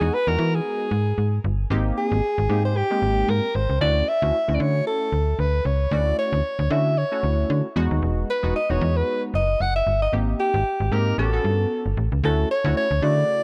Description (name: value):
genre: early-eighties boogie funk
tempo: 114 BPM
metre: 4/4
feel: swing 56% on 16ths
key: unclear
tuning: A4 = 440 Hz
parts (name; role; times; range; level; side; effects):
- breathy alto saxophone; melody; 0.0-13.4 s; G4 to F#5; -26 LUFS; equal; none
- funky polysynth comp; accompaniment; 0.0-13.4 s; C#3 to A4; -31 LUFS; equal; chorus
- slap-like FM bass; bass; 0.0-13.2 s; E1 to E3; -24 LUFS; equal; none
room: light reverb, small room ambience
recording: dark, warm production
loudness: -22 LUFS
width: mono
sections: 0.0-12.2 A section; 12.2-13.4 B section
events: none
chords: 0.0 Emaj9; 1.7 G#maj9; 3.8 Dmaj9; 7.8 Emaj9; 10.1 G#maj9; 11.2 A13; 12.2 Dmaj9